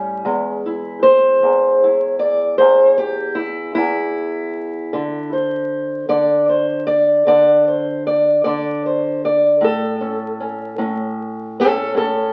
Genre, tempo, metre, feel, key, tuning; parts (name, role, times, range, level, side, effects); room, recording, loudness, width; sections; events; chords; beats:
acoustic country blues, solo or duo; 51 BPM (dotted quarters); 12/8; straight; A4 = 441 Hz
fingerpicked steel-string acoustic guitar; solo; 0.0-12.3 s; E2 to D5; -17 LUFS; equal
wet studio reverb, RT60 0.7 s; very old 78 rpm record, vinyl crackle; -17 LUFS; mono
0.0-12.3 A section
steel-string acoustic guitar solo 0.0-12.3
0.2 E; 4.9 Csus2/D; 9.6 A
| 0.24 1.41 2.58 3.75 | 4.92 6.09 7.26 8.43 | 9.61 10.78 11.95